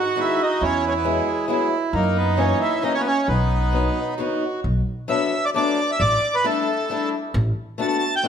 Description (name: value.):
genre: musette waltz.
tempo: 134 BPM.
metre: 3/4.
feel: straight.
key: B major, B minor from 4.6 s.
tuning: A4 = 440 Hz.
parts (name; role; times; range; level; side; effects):
accordion; melody; 0.0-8.3 s; G#3 to A5; -22 LUFS; equal; none.
accordion; second line; 0.0-4.6 s; C#4 to F#4; -24 LUFS; right 5 dB; none.
picked swing-style acoustic guitar; accompaniment; 0.2-8.3 s; D#3 to F#4; -25 LUFS; left 4 dB; none.
upright bass; bass; 0.6-7.5 s; A1 to F#2; -22 LUFS; equal; none.
room: wet recital hall reverb, RT60 1.3 s.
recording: none.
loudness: -19 LUFS.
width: side -8 dB against mid.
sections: 0.0-4.6 A section; 4.6-8.3 B section.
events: none.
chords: 0.0 G#m; 0.6 Eadd9; 1.9 F#7; 3.3 B; 4.6 Bm7; 6.0 A7sus4; 7.3 D6/A.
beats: 0.16 | 0.61 1.05 1.49 | 1.94 2.38 2.83 | 3.28 3.73 4.18 | 4.64 5.10 5.55 | 6.00 6.45 6.90 | 7.35 7.79 8.24.